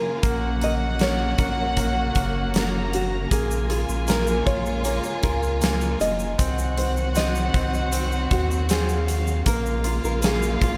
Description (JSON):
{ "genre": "pop ballad", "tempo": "78 BPM", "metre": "4/4", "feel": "straight", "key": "Bb minor", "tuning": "A4 = 439 Hz", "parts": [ { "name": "nylon-string guitar", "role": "melody", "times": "0.0-10.8 s", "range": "Gb4 to Eb5", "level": "-31 LUFS", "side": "equal", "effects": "lush chorus, tape echo" }, { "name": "warm studio violin section", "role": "second line", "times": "0.0-10.8 s", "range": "F5 to Bb5", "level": "-34 LUFS", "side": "equal", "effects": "none" }, { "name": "bright concert grand piano", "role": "accompaniment", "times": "0.0-10.8 s", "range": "Bb3 to F4", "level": "-33 LUFS", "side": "equal", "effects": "none" }, { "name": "warm studio string section", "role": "sustained chords", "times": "0.0-10.8 s", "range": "Db3 to Gb4", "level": "-33 LUFS", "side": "equal", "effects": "none" }, { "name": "warm sub bass", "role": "bass", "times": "0.2-10.8 s", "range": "F1 to Eb2", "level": "-28 LUFS", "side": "equal", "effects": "none" }, { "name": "huge arena drum kit", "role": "drums", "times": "0.2-10.8 s", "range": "hi-hat, kick drum, snare drum", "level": "-28 LUFS", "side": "equal", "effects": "none" }, { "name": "egg shaker", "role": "percussion", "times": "3.3-10.6 s", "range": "none", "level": "-40 LUFS", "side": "equal", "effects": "none" } ], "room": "moderate huge ambient reverb, RT60 3.8 s", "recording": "dreamy mix soaked in reverb", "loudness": "-23 LUFS", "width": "mono", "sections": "0.0-10.8 A section", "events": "none", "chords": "0.2 Gb/Bb; 3.3 Bbm7; 6.4 Cdim; 9.5 Bbm7", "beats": "| 0.24 1.00 1.77 2.54 | 3.31 4.08 4.85 5.62 | 6.39 7.16 7.93 8.70 | 9.47 10.24" }